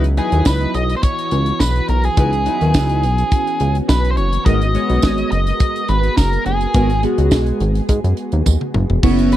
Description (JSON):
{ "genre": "early-eighties boogie funk", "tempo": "105 BPM", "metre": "4/4", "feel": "straight", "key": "G# minor", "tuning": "A4 = 440 Hz", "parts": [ { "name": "chorused polysynth", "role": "accompaniment", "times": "0.0-9.4 s", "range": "F#3 to C#5", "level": "-19 LUFS", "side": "equal", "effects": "none" }, { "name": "soft string machine", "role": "sustained chords", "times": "0.0-9.4 s", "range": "E3 to D#5", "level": "-25 LUFS", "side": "right 1 dB", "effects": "ensemble chorus" }, { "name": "chorused synth bass", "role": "bass", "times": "0.0-9.3 s", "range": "E1 to G#2", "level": "-17 LUFS", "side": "equal", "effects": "none" }, { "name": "tight funk drum kit", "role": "drums", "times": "0.0-9.4 s", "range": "crash cymbal, hi-hat, kick drum, snare drum, toms", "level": "-17 LUFS", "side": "equal", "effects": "none" }, { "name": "octave-fuzz lead guitar", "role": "melody", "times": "0.2-9.4 s", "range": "G#4 to D#5", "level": "-21 LUFS", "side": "equal", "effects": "distortion, tape echo" }, { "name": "tambourine", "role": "percussion", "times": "0.5-8.6 s", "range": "none", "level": "-30 LUFS", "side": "right 21 dB", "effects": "none" } ], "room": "little or no reverb", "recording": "dry, close 1970s-style studio recording", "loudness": "-14 LUFS", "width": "side -13 dB against mid", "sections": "0.0-9.0 A section", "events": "drum fill 8.5-9.0", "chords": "0.0 C#m11; 4.5 G#m9" }